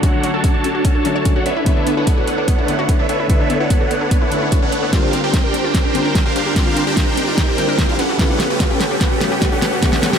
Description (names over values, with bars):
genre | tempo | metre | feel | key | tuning
future bass | 147 BPM | 4/4 | half-time | unclear | A4 = 440 Hz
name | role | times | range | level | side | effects
felt-muted upright piano | accompaniment | 0.0-10.2 s | C#3 to C#5 | -24 LUFS | left 4 dB | sidechain pumping, ping-pong delay
wide unison pluck | arpeggios | 0.0-10.2 s | B3 to C#5 | -25 LUFS | left 4 dB | cassette tape, sidechain pumping, ping-pong delay
supersaw chords | riff | 0.0-10.2 s | C#4 to A5 | -18 LUFS | right 2 dB | phaser, sidechain pumping, low-pass filter, ping-pong delay
electronic kick drum | drums | 0.0-9.9 s | none | -17 LUFS | equal | studio reverb
pop drum kit | drums | 0.0-10.2 s | hi-hat, snare drum | -22 LUFS | right 1 dB | studio reverb
riser | sound effects | 1.5-10.2 s | none | -29 LUFS | right 2 dB | none
room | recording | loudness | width
light reverb | none | -14 LUFS | side -7 dB against mid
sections
0.0-10.2 A section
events
build-up 0.0-10.2; riser 1.5-10.2; drum fill 4.9-10.2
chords
0.0 Dmaj7; 1.5 Bm11; 4.9 Bb69; 8.0 Gmaj9#11